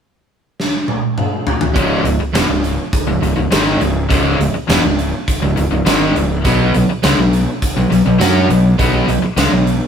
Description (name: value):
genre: classic rock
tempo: 102 BPM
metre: 4/4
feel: straight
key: C# minor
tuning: A4 = 440 Hz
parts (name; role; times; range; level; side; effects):
- big rock drum kit; drums; 0.6-9.8 s; hi-hat, kick drum, snare drum, tambourine, toms; -17 LUFS; equal; none
- raw garage guitar; riff; 1.7-9.7 s; C#2 to F#4; -18 LUFS; right 3 dB; overdrive
- tight distorted guitar; riff; 1.8-9.7 s; C#2 to F#4; -18 LUFS; left 4 dB; distortion
- fuzz fingered electric bass; bass; 1.8-9.8 s; C#1 to F#2; -18 LUFS; equal; overdrive
room: moderate studio reverb, RT60 0.6 s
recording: rough rehearsal-room recording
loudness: -12 LUFS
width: side -7 dB against mid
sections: 0.0-1.8 A section; 1.8-9.9 B section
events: drum fill 0.6-1.8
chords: 0.0 N.C.; 1.8 C#m; 6.4 B5